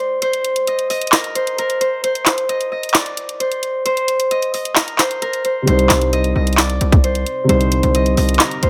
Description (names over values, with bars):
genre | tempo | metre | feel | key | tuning
hip hop, trap | 132 BPM | 4/4 | half-time | C minor | A4 = 439 Hz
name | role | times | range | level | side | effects
Celtic harp | melody | 0.0-8.7 s | Bb4 to Eb5 | -21 LUFS | equal | tape echo
trap drum kit | drums | 0.2-8.7 s | handclaps, hi-hat, kick drum, snare drum | -18 LUFS | equal | none
dark baby grand piano | accompaniment | 5.6-8.7 s | C3 to C5 | -22 LUFS | equal | none
distorted 808-style bass | bass | 5.7-8.7 s | C2 | -19 LUFS | equal | distortion
room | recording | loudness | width
little or no reverb | none | -17 LUFS | mono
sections
0.0-8.7 A section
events
break 0.0-5.7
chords
0.0 N.C.; 5.7 Cm